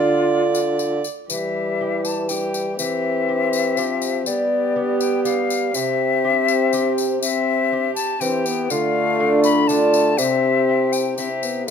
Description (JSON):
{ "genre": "classical, renaissance-style consort dance", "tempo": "122 BPM", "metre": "3/4", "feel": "straight", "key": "unclear", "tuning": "A4 = 441 Hz", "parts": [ { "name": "mellow hollow concert flute", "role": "melody", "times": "0.0-11.7 s", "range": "F4 to B5", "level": "-23 LUFS", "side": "left 7 dB", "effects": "none" }, { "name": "warm viola", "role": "second line", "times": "0.0-11.7 s", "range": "F4 to D5", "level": "-27 LUFS", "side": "right 8 dB", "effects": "none" }, { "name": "clear trombone", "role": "accompaniment", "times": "0.0-11.7 s", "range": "G3 to F4", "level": "-23 LUFS", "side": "left 4 dB", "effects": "none" }, { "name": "lute", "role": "accompaniment", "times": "0.0-11.7 s", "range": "C3 to G4", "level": "-26 LUFS", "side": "right 3 dB", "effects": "none" }, { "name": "mellow bassoon", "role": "bass", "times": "0.0-11.7 s", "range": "C3 to G3", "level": "-24 LUFS", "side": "right 2 dB", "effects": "none" }, { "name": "tambourine", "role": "percussion", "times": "0.5-11.7 s", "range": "none", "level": "-29 LUFS", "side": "left 7 dB", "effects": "none" } ], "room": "little or no reverb", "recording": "close, detailed microphones", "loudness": "-17 LUFS", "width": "side -7 dB against mid", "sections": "0.0-1.3 A section; 1.3-11.7 B section", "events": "none", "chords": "0.0 Dm; 1.3 Em; 2.8 C/E; 4.3 G; 5.7 C; 8.7 Dm; 10.2 C" }